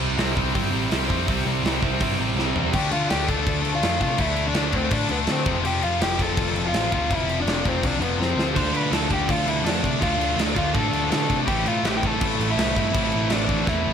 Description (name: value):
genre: punk rock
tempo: 165 BPM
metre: 4/4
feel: straight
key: unclear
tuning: A4 = 438 Hz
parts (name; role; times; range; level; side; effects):
- heavy high-gain guitar; riff; 0.0-13.9 s; F2 to D4; -28 LUFS; equal; distortion
- sludgy distorted guitar; riff; 0.0-2.7, 8.6-13.9 s; A2 to F4; -28 LUFS; right 12 dB; overdrive
- tight distorted guitar; riff; 0.0-13.9 s; F2 to D4; -28 LUFS; left 15 dB; distortion
- overdriven picked electric bass; bass; 0.0-13.9 s; F1 to D3; -28 LUFS; equal; none
- big rock drum kit; drums; 0.2-13.8 s; crash cymbal, hi-hat, kick drum, snare drum, toms; -26 LUFS; equal; none
- crunchy overdriven guitar; melody; 2.7-13.9 s; B3 to C6; -26 LUFS; equal; none
room: little or no reverb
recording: none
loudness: -20 LUFS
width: side -8 dB against mid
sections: 0.0-2.7 A section; 2.7-13.9 B section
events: drum fill 2.4-2.7, 8.2-8.6, 13.7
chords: 0.0 C; 2.7 Dm; 5.5 F; 8.6 Dm; 11.5 Am